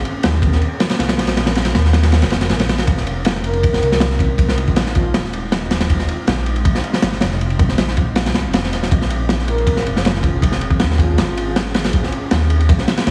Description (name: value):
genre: drum and bass, jungle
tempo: 159 BPM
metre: 4/4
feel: straight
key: F minor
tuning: A4 = 441 Hz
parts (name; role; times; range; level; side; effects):
- ethereal airy pad; sustained chords; 0.0-13.1 s; Ab3 to Bb4; -30 LUFS; equal; ensemble chorus, built-in reverb
- dark detuned saw bass; bass; 0.0-13.1 s; Eb1 to Eb2; -21 LUFS; equal; none
- crunchy breakbeat drum kit; drums; 0.0-13.1 s; kick drum, ride cymbal, snare drum; -19 LUFS; equal; none
- breathy flute-like synth lead; melody; 3.4-5.2, 9.5-11.5 s; F4 to Bb4; -27 LUFS; equal; subtle chorus, dub echo
room: light reverb, small room ambience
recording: heavily compressed radio sound, vinyl crackle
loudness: -17 LUFS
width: mono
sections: 0.0-13.1 A section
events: kick drops out 2.1-2.9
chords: 0.0 Bbmadd9; 2.9 Fm7; 8.9 Bbm9